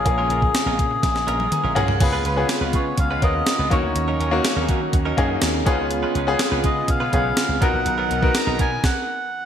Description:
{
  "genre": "1980s-style pop",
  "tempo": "123 BPM",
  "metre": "4/4",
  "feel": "straight",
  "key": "unclear",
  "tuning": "A4 = 440 Hz",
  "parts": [
    { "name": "melodica", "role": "melody", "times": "0.0-9.5 s", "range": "G#4 to A#5", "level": "-24 LUFS", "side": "left 1 dB", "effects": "none" },
    { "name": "bright grand piano", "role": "accompaniment", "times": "0.0-8.9 s", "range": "A#3 to A#5", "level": "-24 LUFS", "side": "left 3 dB", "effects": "none" },
    { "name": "lush unison pad", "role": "sustained chords", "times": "0.0-8.8 s", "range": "C#3 to A#4", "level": "-30 LUFS", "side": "right 1 dB", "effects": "chorus, tremolo" },
    { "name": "slap bass with an envelope filter", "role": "bass", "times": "0.0-8.8 s", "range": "A#1 to D#3", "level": "-26 LUFS", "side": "right 1 dB", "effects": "none" },
    { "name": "direct-recorded clean electric guitar", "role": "riff", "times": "0.1-8.8 s", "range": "F#3 to B4", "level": "-30 LUFS", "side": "right 4 dB", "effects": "wide subtle chorus" },
    { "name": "gated 80s digital drum machine", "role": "drums", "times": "0.1-9.0 s", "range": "crash cymbal, hi-hat, kick drum, snare drum, toms", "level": "-22 LUFS", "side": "right 1 dB", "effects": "gated reverb, gated reverb snare" }
  ],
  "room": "moderate lush hall reverb, RT60 1.6 s",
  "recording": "bright 1980s-style digital production",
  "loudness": "-18 LUFS",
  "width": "side -9 dB against mid",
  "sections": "0.0-2.0 A section; 2.0-9.5 B section",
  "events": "drum fill 1.0-2.0; grand piano fill 1.0-2.0; stop 8.8-9.5",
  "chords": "0.0 A#m7; 2.0 C#7; 3.7 D#m7; 5.7 C#7; 7.6 Bmaj7",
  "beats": "| 0.06 0.54 1.03 1.52 | 2.01 2.50 2.98 3.47 | 3.96 4.45 4.93 5.42 | 5.91 6.40 6.89 7.37 | 7.86 8.35 8.84 9.32"
}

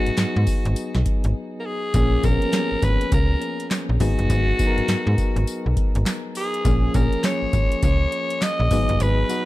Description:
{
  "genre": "R&B, new jack swing",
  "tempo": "102 BPM",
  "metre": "4/4",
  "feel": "swing 62% on 16ths",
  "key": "G# dorian",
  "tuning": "A4 = 439 Hz",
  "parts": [
    { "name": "raspy alto saxophone", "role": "melody", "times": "0.0-9.5 s", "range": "F#4 to D#5", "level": "-26 LUFS", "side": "equal", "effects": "none" },
    { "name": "soft electric-piano-like synth keys", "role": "accompaniment", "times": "0.0-9.5 s", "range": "E#3 to A#4", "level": "-27 LUFS", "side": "left 2 dB", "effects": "chorus, tremolo" },
    { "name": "slap-like FM bass", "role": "bass", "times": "0.1-9.2 s", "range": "G1 to G#2", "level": "-21 LUFS", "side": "equal", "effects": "none" },
    { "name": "booming analog drum machine", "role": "drums", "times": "0.1-9.5 s", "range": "handclaps, hi-hat, kick drum, snare drum, tambourine", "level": "-22 LUFS", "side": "equal", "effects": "none" }
  ],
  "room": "digital ambience",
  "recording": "dark, warm production",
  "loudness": "-19 LUFS",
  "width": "side -17 dB against mid",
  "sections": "0.0-9.5 A section",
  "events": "break 1.4-1.9; kick muted 9.0-9.5",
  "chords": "0.0 G#m7; 1.9 A#m7; 4.0 G#m7; 6.6 A#m7; 8.7 G#m7",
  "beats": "0.18 0.77 1.35 | 1.94 2.53 3.12 3.71 | 4.29 4.88 5.47 6.06 | 6.65 7.24 7.82 8.41 | 9.00"
}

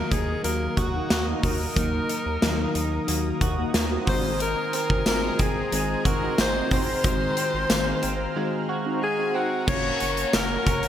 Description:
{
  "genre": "1980s-style pop",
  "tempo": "91 BPM",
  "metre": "4/4",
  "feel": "straight",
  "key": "unclear",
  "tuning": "A4 = 439 Hz",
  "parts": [
    { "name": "bright alto saxophone", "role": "melody", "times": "0.0-10.9 s", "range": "Gb4 to Db5", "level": "-28 LUFS", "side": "left 2 dB", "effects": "shimmer reverb" },
    { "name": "FM electric piano with soft pad layer", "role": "accompaniment", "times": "0.0-10.9 s", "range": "Eb3 to F5", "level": "-30 LUFS", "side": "left 2 dB", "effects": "chorus, shimmer reverb" },
    { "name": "brassy analog pad", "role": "sustained chords", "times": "0.0-10.9 s", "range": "Bb4 to F6", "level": "-34 LUFS", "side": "equal", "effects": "wide subtle chorus, shimmer reverb" },
    { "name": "direct-recorded clean electric guitar", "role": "riff", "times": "0.0-10.9 s", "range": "Eb3 to Gb4", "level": "-33 LUFS", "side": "right 6 dB", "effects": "analog chorus, shimmer reverb" },
    { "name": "round analog bass", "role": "bass", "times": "0.0-10.9 s", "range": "Gb1 to Eb2", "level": "-30 LUFS", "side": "equal", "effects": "none" },
    { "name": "big rock drum kit", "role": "drums", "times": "0.1-10.9 s", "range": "crash cymbal, hi-hat, kick drum, snare drum, tambourine", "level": "-25 LUFS", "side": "equal", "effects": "gated reverb" },
    { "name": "mellow synth brass", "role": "stabs", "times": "0.9-9.5 s", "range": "Bb3 to Gb4", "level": "-35 LUFS", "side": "right 1 dB", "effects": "none" },
    { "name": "rich studio violin section", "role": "second line", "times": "4.1-10.9 s", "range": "Gb5 to Db6", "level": "-35 LUFS", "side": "equal", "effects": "shimmer reverb, digital delay" }
  ],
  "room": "moderate plate reverb, RT60 2.8 s",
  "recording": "bright 1980s-style digital production",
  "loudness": "-22 LUFS",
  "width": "side -10 dB against mid",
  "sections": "0.0-9.7 A section; 9.7-10.9 B section",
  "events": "none",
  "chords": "0.0 Ebm; 4.1 Ab7; 9.7 Gb",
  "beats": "0.45 1.11 | 1.77 2.43 3.08 3.74 | 4.40 5.06 5.72 6.38 | 7.04 7.70 8.36 9.02 | 9.68 10.34"
}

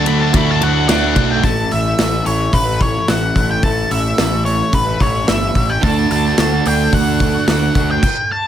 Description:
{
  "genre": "quiet-loud alternative rock",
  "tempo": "109 BPM",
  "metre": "4/4",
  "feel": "straight",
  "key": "unclear",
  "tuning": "A4 = 442 Hz",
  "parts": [
    { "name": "octave-fuzz lead guitar", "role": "melody", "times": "0.0-8.5 s", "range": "B4 to B5", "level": "-19 LUFS", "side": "left 2 dB", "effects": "distortion, plate reverb" },
    { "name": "twelve-string electric guitar", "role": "arpeggios", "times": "0.0-8.0 s", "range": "A2 to F#4", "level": "-22 LUFS", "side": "equal", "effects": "lush chorus, tape echo" },
    { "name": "fuzz guitar", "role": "riff", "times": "0.0-1.4, 5.8-8.0 s", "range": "D3 to D4", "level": "-19 LUFS", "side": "right 11 dB", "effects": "distortion" },
    { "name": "heavy high-gain guitar", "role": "riff", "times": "0.0-1.4 s", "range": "D3 to D4", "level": "-20 LUFS", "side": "left 13 dB", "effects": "distortion" },
    { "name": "fuzz picked electric bass", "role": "bass", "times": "0.0-8.0 s", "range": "G1 to D2", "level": "-19 LUFS", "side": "left 1 dB", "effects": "overdrive" },
    { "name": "big rock drum kit", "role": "drums", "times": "0.1-8.2 s", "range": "crash cymbal, hi-hat, kick drum, ride cymbal, snare drum", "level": "-18 LUFS", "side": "equal", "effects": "none" }
  ],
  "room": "moderate studio reverb, RT60 0.6 s",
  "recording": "none",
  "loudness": "-13 LUFS",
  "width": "side -10 dB against mid",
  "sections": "0.0-1.4 A section; 1.4-8.5 B section",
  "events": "lead electric guitar solo 0.0-1.4",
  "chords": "0.0 Dadd9; 1.4 A; 5.8 D",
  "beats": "0.34 0.89 | 1.44 1.98 2.53 3.08 | 3.63 4.18 4.73 5.28 | 5.83 6.38 6.93 7.48 | 8.03"
}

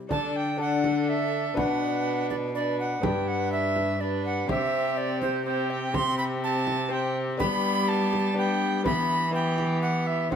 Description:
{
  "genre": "classical, renaissance-style consort dance",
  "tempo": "123 BPM",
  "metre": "3/4",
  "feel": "straight",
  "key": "D mixolydian",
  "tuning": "A4 = 439 Hz",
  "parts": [
    { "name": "lute", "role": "accompaniment", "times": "0.0-10.4 s", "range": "G2 to C5", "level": "-33 LUFS", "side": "left 6 dB", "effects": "none" },
    { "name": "dark violin", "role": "melody", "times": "0.1-10.4 s", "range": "G4 to B4", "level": "-35 LUFS", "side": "equal", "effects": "none" },
    { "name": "bright tenor recorder", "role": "second line", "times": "0.1-10.4 s", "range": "C5 to C6", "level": "-28 LUFS", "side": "right 2 dB", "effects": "none" },
    { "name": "warm viola", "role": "accompaniment", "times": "0.1-10.4 s", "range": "B3 to D4", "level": "-32 LUFS", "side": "left 2 dB", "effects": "none" },
    { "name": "rich cello", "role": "bass", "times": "0.1-10.4 s", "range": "G2 to G3", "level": "-30 LUFS", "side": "right 1 dB", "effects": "none" },
    { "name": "frame drum", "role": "percussion", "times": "0.1-10.4 s", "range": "none", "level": "-31 LUFS", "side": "right 2 dB", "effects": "none" }
  ],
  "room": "moderate stone room reverb, RT60 1.0 s",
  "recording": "none",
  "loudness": "-24 LUFS",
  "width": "side -8 dB against mid",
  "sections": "0.1-10.4 A section",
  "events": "none",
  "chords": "0.1 D; 1.6 Bm; 3.0 G; 4.5 C5; 7.4 G; 8.9 Em",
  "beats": "| 0.11 0.60 1.09 | 1.57 2.06 2.55 | 3.04 3.52 4.01 | 4.49 4.98 5.46 | 5.94 6.43 6.91 | 7.40 7.88 8.37 | 8.85 9.34 9.83 | 10.32"
}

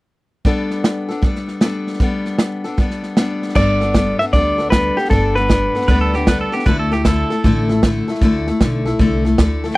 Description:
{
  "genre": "honky-tonk and classic country",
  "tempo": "155 BPM",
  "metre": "4/4",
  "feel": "swing 65% on 8ths",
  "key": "G major",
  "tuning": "A4 = 440 Hz",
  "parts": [
    { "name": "picked steel-string acoustic guitar", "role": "accompaniment", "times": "0.4-9.8 s", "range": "D3 to A4", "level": "-19 LUFS", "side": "left 2 dB", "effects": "none" },
    { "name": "natural country drum kit", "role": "drums", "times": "0.4-9.7 s", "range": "crash cymbal, hi-hat, kick drum, snare drum", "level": "-17 LUFS", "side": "right 1 dB", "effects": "none" },
    { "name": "clean electric guitar", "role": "melody", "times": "3.6-6.5, 9.8 s", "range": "G4 to E5", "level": "-18 LUFS", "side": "equal", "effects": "none" },
    { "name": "upright bass", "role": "bass", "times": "3.6-9.7 s", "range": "G1 to D2", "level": "-20 LUFS", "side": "equal", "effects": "none" },
    { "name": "pedal steel guitar", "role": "second line", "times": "5.9-7.8 s", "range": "G4 to B4", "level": "-22 LUFS", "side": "right 3 dB", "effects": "none" }
  ],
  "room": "little or no reverb",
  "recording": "dry, close 1970s-style studio recording",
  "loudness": "-14 LUFS",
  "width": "side -20 dB against mid",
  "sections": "0.5-3.6 A section; 3.6-9.8 B section",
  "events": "none",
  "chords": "0.5 Gadd9; 6.7 Dsus2",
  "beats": "| 0.45 0.84 1.23 1.62 | 2.00 2.39 2.78 3.17 | 3.56 3.95 4.33 4.72 | 5.11 5.50 5.89 6.28 | 6.66 7.05 7.44 7.83 | 8.22 8.60 8.99 9.38 | 9.77"
}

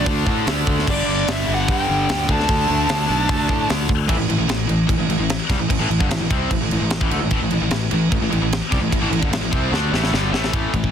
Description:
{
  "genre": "hard rock",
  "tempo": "149 BPM",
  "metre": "4/4",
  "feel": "straight",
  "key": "unclear",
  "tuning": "A4 = 439 Hz",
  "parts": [
    { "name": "high-gain lead guitar", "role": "melody", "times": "0.0-3.7 s", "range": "D5 to A5", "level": "-22 LUFS", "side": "equal", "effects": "distortion, slapback echo" },
    { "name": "cranked stack guitar", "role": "riff", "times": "0.0-10.9 s", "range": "G2 to D4", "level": "-25 LUFS", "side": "right 11 dB", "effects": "overdrive" },
    { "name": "high-gain distorted guitar", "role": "riff", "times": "0.0-10.9 s", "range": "G2 to D4", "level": "-24 LUFS", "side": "left 12 dB", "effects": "distortion" },
    { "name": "tight distorted guitar", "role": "riff", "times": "0.0-3.9, 7.3-10.9 s", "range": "G2 to D4", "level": "-27 LUFS", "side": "equal", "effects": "distortion" },
    { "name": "fuzz fingered electric bass", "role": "bass", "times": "0.0-10.9 s", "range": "G1 to A2", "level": "-24 LUFS", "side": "equal", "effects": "overdrive" },
    { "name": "tight metal drum kit", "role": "drums", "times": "0.1-10.9 s", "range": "crash cymbal, hi-hat, kick drum, ride cymbal, snare drum", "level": "-22 LUFS", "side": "equal", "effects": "none" }
  ],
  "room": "little or no reverb",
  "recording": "dense, heavily limited modern master",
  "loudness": "-17 LUFS",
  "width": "side -8 dB against mid",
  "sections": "0.0-4.1 A section; 4.1-10.5 B section",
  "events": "drum fill 9.7-10.5",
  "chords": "0.0 D5; 0.9 G5; 2.3 D5; 4.1 A5",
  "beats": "0.07 0.47 | 0.87 1.27 1.68 2.08 | 2.48 2.88 3.29 3.69 | 4.09 4.49 4.90 5.30 | 5.70 6.10 6.50 6.91 | 7.31 7.71 8.11 8.52 | 8.92 9.32 9.72 10.13 | 10.53"
}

